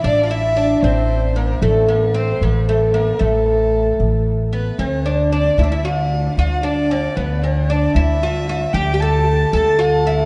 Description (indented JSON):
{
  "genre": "Arabic maqam ensemble",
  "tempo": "76 BPM (dotted quarters)",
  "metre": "6/8",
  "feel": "straight",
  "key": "A maqam bayati, D maqam rast from 4.8 s",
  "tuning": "A4 = 439 Hz",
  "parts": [
    { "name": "oud", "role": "melody", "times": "0.0-10.3 s", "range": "A3 to A4", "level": "-21 LUFS", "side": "equal", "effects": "none" },
    { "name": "dark violin", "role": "second line", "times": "0.0-10.3 s", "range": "A4 to A5", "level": "-27 LUFS", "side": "equal", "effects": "none" },
    { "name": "upright bass", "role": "bass", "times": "0.0-10.2 s", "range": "A1 to D2", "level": "-21 LUFS", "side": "equal", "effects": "none" }
  ],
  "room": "wet cathedral reverb, RT60 5.3 s",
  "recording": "in a vast, echoing space, nothing above 10.4 kHz",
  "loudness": "-17 LUFS",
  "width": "mono",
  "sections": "0.0-4.8 A section; 4.8-10.3 B section",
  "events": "none",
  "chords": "none",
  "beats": "| 0.04 0.83 | 1.63 2.42 | 3.21 4.00 | 4.79 5.58 | 6.37 7.16 | 7.95 8.74 | 9.53"
}